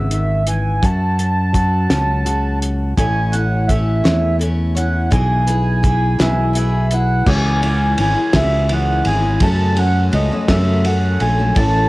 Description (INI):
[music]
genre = indie folk with a building arrangement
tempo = 56 BPM (dotted quarters)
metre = 6/8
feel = straight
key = unclear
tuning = A4 = 440 Hz
[part]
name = mellow accordion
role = melody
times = 0.0-11.9 s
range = D#5 to A5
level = -21 LUFS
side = right 2 dB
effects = cassette tape, tape echo
[part]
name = fingerpicked plugged-in steel-string acoustic guitar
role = accompaniment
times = 0.0-2.9 s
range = F#2 to F#4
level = -25 LUFS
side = left 1 dB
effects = cassette tape
[part]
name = fingered electric bass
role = bass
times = 0.0-11.9 s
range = G#1 to F#2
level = -17 LUFS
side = equal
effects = none
[part]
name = cloth-damped thuddy drum kit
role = drums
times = 0.1-11.7 s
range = crash cymbal, hi-hat, kick drum, ride cymbal, snare drum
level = -20 LUFS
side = equal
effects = none
[part]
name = picked steel-string acoustic guitar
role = accompaniment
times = 3.0-11.9 s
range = F#2 to C#5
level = -22 LUFS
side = left 3 dB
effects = cassette tape
[part]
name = dark upright piano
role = accompaniment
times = 7.3-11.9 s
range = F#1 to C#5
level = -27 LUFS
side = right 3 dB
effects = cassette tape
[sound]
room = studio reverb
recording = home recording on cassette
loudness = -14 LUFS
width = side -20 dB against mid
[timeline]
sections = 0.0-7.3 A section; 7.3-11.9 B section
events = none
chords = 0.0 C#m; 0.8 F#m; 3.0 A; 5.1 E/B; 7.3 C#m; 9.4 F#m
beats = | 0.83 1.90 | 2.98 4.05 | 5.12 6.19 | 7.27 8.34 | 9.41 10.48 | 11.56